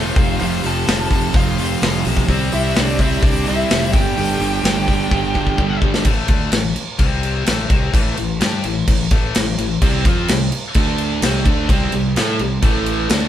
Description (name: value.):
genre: hard rock.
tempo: 128 BPM.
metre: 4/4.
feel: straight.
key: A minor.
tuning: A4 = 441 Hz.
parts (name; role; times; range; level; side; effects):
bluesy overdriven lead guitar; melody; 0.0-5.8 s; D5 to A5; -26 LUFS; equal; distortion, analog delay.
octave-fuzz lead guitar; second line; 0.0-5.8 s; D4 to A4; -27 LUFS; right 1 dB; distortion.
crunchy overdriven guitar; riff; 0.0-6.1, 9.8-13.3 s; F2 to A4; -22 LUFS; right 8 dB; none.
tight distorted guitar; riff; 0.0-13.3 s; F2 to A4; -23 LUFS; left 8 dB; distortion.
fuzz fingered electric bass; bass; 0.0-13.3 s; E1 to A2; -23 LUFS; equal; overdrive.
big rock drum kit; drums; 0.2-13.2 s; crash cymbal, hi-hat, kick drum, snare drum; -18 LUFS; equal; none.
room: light reverb.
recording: band playing live in one room.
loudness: -15 LUFS.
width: side -11 dB against mid.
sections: 0.0-6.1 A section; 6.1-13.3 B section.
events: drum fill 5.1-6.1.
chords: 0.2 F; 2.3 C; 3.9 G5; 6.1 A5; 7.0 C5; 7.5 Am; 9.8 C5; 10.8 D5; 11.2 C5; 12.6 A5.